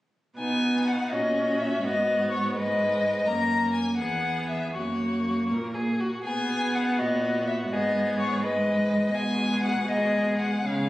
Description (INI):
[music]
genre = quick classical-period movement for string quartet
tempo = 82 BPM (dotted quarters)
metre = 6/8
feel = rubato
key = B major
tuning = A4 = 440 Hz
[part]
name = rich violin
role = melody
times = 0.4-10.9 s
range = C#5 to A#5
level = -27 LUFS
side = left 2 dB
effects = none
[part]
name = rich violin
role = second line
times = 0.4-10.9 s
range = D#4 to B4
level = -34 LUFS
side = left 1 dB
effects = none
[part]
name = clear viola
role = accompaniment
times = 0.4-10.9 s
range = G#3 to C#4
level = -29 LUFS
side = right 1 dB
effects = none
[part]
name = warm cello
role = bass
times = 0.4-10.9 s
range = E2 to C#3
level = -30 LUFS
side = right 1 dB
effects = none
[sound]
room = moderate recital hall reverb, RT60 1.4 s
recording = recorded on a phone in the room, studio reverb, compression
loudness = -23 LUFS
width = side -16 dB against mid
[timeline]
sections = 0.4-10.9 A section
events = none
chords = 0.4 B; 1.8 G#m; 3.3 F#add9; 4.0 E; 4.8 F#; 6.3 B; 7.7 G#m; 9.1 G#m/B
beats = | 0.39 1.12 | 1.84 2.56 | 3.28 4.00 | 4.75 5.51 | 6.26 6.99 | 7.72 8.43 | 9.14 9.89 | 10.67